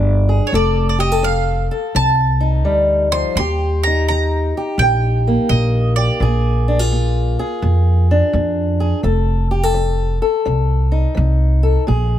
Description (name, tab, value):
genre	acoustic country blues, solo or duo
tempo	84 BPM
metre	4/4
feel	swing 66% on 8ths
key	unclear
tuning	A4 = 442 Hz
part	fingerpicked acoustic archtop guitar	accompaniment	0.0-12.2 s	Bb2 to A4	-19 LUFS	left 2 dB	none
part	upright bass	bass	0.0-12.2 s	F1 to F2	-16 LUFS	equal	none
part	mandolin	melody	0.5-8.8 s	Db5 to C6	-20 LUFS	right 4 dB	none
room	little or no reverb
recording	close, detailed microphones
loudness	-14 LUFS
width	side -11 dB against mid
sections	0.0-11.9 A section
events	none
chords	0.0 Bb7; 0.5 F7; 3.4 Eb; 6.2 Bb7; 9.0 F7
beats	| 0.53 1.24 1.95 2.66 | 3.37 4.08 4.79 5.50 | 6.21 6.92 7.63 8.34 | 9.05 9.76 10.47 11.18 | 11.89